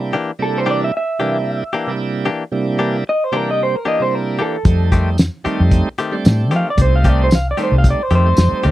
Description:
straight-eighth soul blues; 113 BPM; 4/4; swing 54% on 16ths; C mixolydian; A4 = 439 Hz
bright tonewheel organ; accompaniment; 0.0-8.7 s; C3 to G4; -21 LUFS; right 3 dB; slow rotary speaker, overdrive
direct-recorded clean electric guitar; stabs; 0.1-8.7 s; Eb3 to G4; -20 LUFS; left 4 dB
electric guitar through a small old amp; melody; 0.4-8.7 s; A4 to F5; -19 LUFS; right 1 dB
vintage muted fingered electric bass; bass; 4.7-8.7 s; C2 to F3; -14 LUFS; equal
cloth-damped thuddy drum kit; drums; 4.7-8.7 s; hi-hat, kick drum, snare drum, tambourine; -14 LUFS; equal
little or no reverb; dry, close 1970s-style studio recording; -14 LUFS; side -15 dB against mid
0.0-8.7 A section
0.0 C9; 4.7 F9

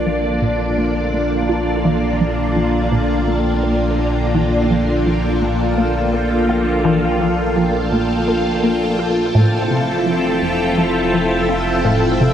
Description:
ambient, sequencer-driven space music; 84 BPM; 4/4; straight; Bb lydian; A4 = 440 Hz
string machine, full ensemble; sustained chords; 0.0-12.3 s; Bb3 to E5; -17 LUFS; equal; ensemble chorus
round analog bass; bass; 0.0-12.3 s; F1 to Bb1; -24 LUFS; equal
bubbling stepped-filter texture; texture; 2.1-12.3 s; G5; -31 LUFS; right 1 dB; chorus, built-in reverb
resonant blip pluck; riff; 0.1-12.3 s; F2 to F4; -21 LUFS; equal; phaser, analog chorus, tape echo
wet huge ambient reverb, RT60 8.3 s; dreamy mix soaked in reverb; -15 LUFS; side -9 dB against mid
0.0-12.3 A section
fade-in on synth texture 0.0-12.3
0.0 Bbmaj7; 9.3 Fmaj7

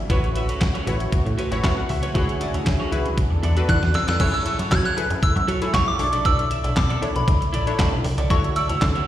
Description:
early-eighties boogie funk; 117 BPM; 4/4; straight; A4 = 442 Hz
lush unison pad; sustained chords; 0.0-4.2 s; C#3 to A4; -30 LUFS; equal; chorus
electric guitar at the edge of break-up; riff; 0.0-9.1 s; E4 to E5; -31 LUFS; right 3 dB; wide subtle chorus, slapback echo
plucky analog bass; bass; 0.0-9.0 s; A1 to F#3; -24 LUFS; equal
funky polysynth comp; accompaniment; 0.1-8.7 s; D4 to F#5; -28 LUFS; left 3 dB; chorus, slapback echo
detuned 8-bit digital drum machine; drums; 0.1-9.1 s; crash cymbal, handclaps, hi-hat, kick drum, snare drum; -23 LUFS; equal
soft synth bell; melody; 3.7-9.1 s; B5 to G#6; -24 LUFS; right 1 dB; chorus, phaser, slapback echo
little or no reverb; live gig heard through the venue's PA, recital hall reverb; -19 LUFS; side -12 dB against mid
0.0-4.2 A section; 4.2-9.1 B section
drum fill 3.7-4.2
0.1 A69; 2.1 Dmaj9#11; 3.2 E7sus4; 4.2 F#m7; 6.0 Bm11; 8.3 Dmaj9

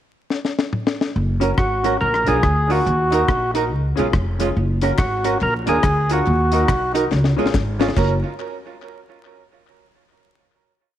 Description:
ska; 141 BPM; 4/4; swing 62% on 8ths; F# major; A4 = 440 Hz
deep reggae drum kit; drums; 0.3-8.1 s; crash cymbal, hi-hat, kick drum, rim click, snare drum, toms; -22 LUFS; left 2 dB
upright bass; bass; 1.2-8.2 s; E#1 to D#2; -21 LUFS; equal
archtop guitar, miked and amplified; accompaniment; 1.4-8.1 s; G#3 to A#4; -24 LUFS; right 8 dB; tape echo
warm upright piano; stabs; 1.4-8.2 s; C#4 to A#4; -27 LUFS; left 8 dB
percussive tonewheel organ; melody; 1.6-6.9 s; F#4 to A#4; -20 LUFS; equal; overdrive
group handclap; percussion; 5.0-8.2 s; -40 LUFS; left 5 dB; tape echo
light reverb; 1960s-style stereo with parts hard left and right, vinyl crackle; -16 LUFS; side -11 dB against mid
0.0-1.2 pickup bar; 1.2-8.0 head; 8.0-9.7 final chord
drum fill 0.3-1.2, 7.1-8.0
0.0 N.C.; 1.2 F#; 2.0 A#; 2.9 D#m; 3.7 C#; 4.6 F#; 5.4 A#; 6.3 D#m; 7.1 C#; 8.0 F#

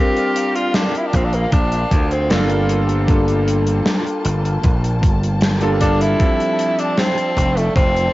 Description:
vaporwave; 77 BPM; 4/4; straight; A4 = 441 Hz
bright tenor saxophone; melody; 0.0-8.1 s; A3 to G4; -21 LUFS; equal; cassette tape, tape echo
clear electric grand piano; accompaniment; 0.0-8.1 s; F3 to Bb4; -21 LUFS; equal; lush chorus, cassette tape, tape echo
warm studio string section; sustained chords; 0.0-8.1 s; F3 to A5; -29 LUFS; left 2 dB; cassette tape
gated 80s drum kit; drums; 0.2-8.1 s; hi-hat, snare drum; -21 LUFS; equal; cassette tape
gritty slap bass; bass; 1.1-8.1 s; F1 to D2; -19 LUFS; equal; overdrive
electronic kick drum; drums; 1.1-7.9 s; -17 LUFS; equal; overdrive, cassette tape
light reverb; home recording on cassette, nothing above 7.7 kHz; -15 LUFS; side -17 dB against mid
0.0-8.1 A section
0.0 Bb6; 2.7 Gm9; 6.2 F69

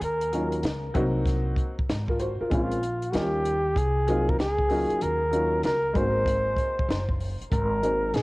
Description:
hip hop, jazz-hop; 96 BPM; 4/4; swing 66% on 16ths; A4 = 440 Hz
breathy flugelhorn; melody; 0.0-8.2 s; F4 to C5; -27 LUFS; equal; cassette tape, tape echo
upright bass; bass; 0.0-8.2 s; Gb1 to Eb2; -29 LUFS; equal
compact cocktail drum kit; drums; 0.0-8.2 s; hi-hat, kick drum, snare drum; -29 LUFS; equal; cassette tape
dark upright piano; accompaniment; 0.3-8.1 s; Gb3 to C5; -29 LUFS; left 1 dB; cassette tape
small room reverb; home recording on cassette; -23 LUFS; side -22 dB against mid
0.0-7.5 A section
0.0 Ebm9; 1.0 Cm7b5; 2.5 Bbm9; 3.1 Eb9; 3.8 Ab13/C; 5.0 Ebm9; 6.0 Ab7; 7.5 Ab9

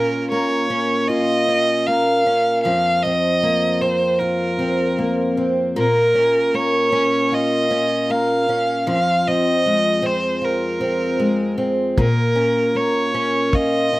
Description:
acoustic pop; 77 BPM; 4/4; swing 55% on 16ths; Bb minor; A4 = 440 Hz
warm violin; melody; 0.0-14.0 s; Bb4 to F5; -20 LUFS; right 1 dB
fingerpicked twelve-string acoustic guitar; accompaniment; 0.0-14.0 s; F2 to F4; -19 LUFS; equal
kick drum; drums; 12.0-13.7 s; -19 LUFS; equal
little or no reverb; recorded outdoors, with no room sound; -16 LUFS; side -18 dB against mid
0.0-14.0 A section
0.0 Bbm; 2.6 F7sus4; 5.8 Bbm; 8.9 Fm7; 12.0 Bbm

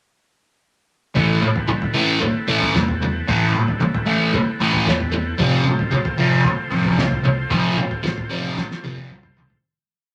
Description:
psychedelic rock; 114 BPM; 4/4; straight; A minor; A4 = 441 Hz
thick fuzz guitar; riff; 1.1-9.4 s; F2 to A3; -21 LUFS; equal; distortion, phaser
overdriven combo organ; sustained chords; 1.2-9.6 s; C4 to C5; -31 LUFS; equal
fingered electric bass; bass; 1.2-9.5 s; A1 to E2; -32 LUFS; equal
cloth-damped thuddy drum kit; drums; 1.2-9.6 s; kick drum, snare drum, toms; -27 LUFS; equal
wet studio reverb, RT60 0.6 s; lossy compression artefacts; -19 LUFS; mono
1.2-9.6 groove
fade-out 7.5-9.6; drum fill 8.6-9.6
1.2 Amadd9; 5.4 F/A

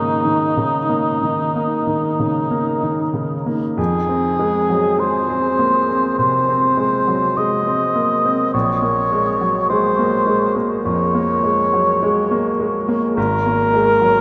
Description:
classical, impressionist duo for cor anglais and grand piano; 46-53 BPM; 4/4; rubato; Bb minor; A4 = 440 Hz
dark cor anglais; melody; 0.0-14.2 s; Eb4 to Eb5; -20 LUFS; equal
clear grand piano; accompaniment; 0.0-14.2 s; Ab1 to C4; -21 LUFS; equal
wet huge ambient reverb, RT60 8.5 s; in a vast, echoing space; -18 LUFS; mono
0.0-14.2 A section
0.0 Absus2; 3.8 Fm7; 8.5 Bbm7; 13.2 Absus2

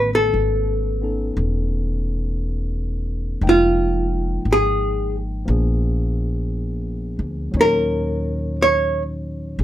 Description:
jazz ballad; 58 BPM; 4/4; swing 67% on 8ths; A4 = 435 Hz
archtop guitar, miked and amplified; melody; 0.0-9.0 s; F4 to C#5; -18 LUFS; right 1 dB
barky tine electric piano; accompaniment; 0.0-9.6 s; A#2 to G5; -28 LUFS; left 1 dB
upright bass; bass; 0.0-9.6 s; E1 to D#2; -22 LUFS; equal
light reverb; rough home demo mix; -18 LUFS; side -12 dB against mid
0.0-9.6 A section
hollow-body jazz guitar solo 0.0-9.6
0.0 Amaj9#11; 3.4 Fm11; 5.5 A#7b9; 7.5 D#m7

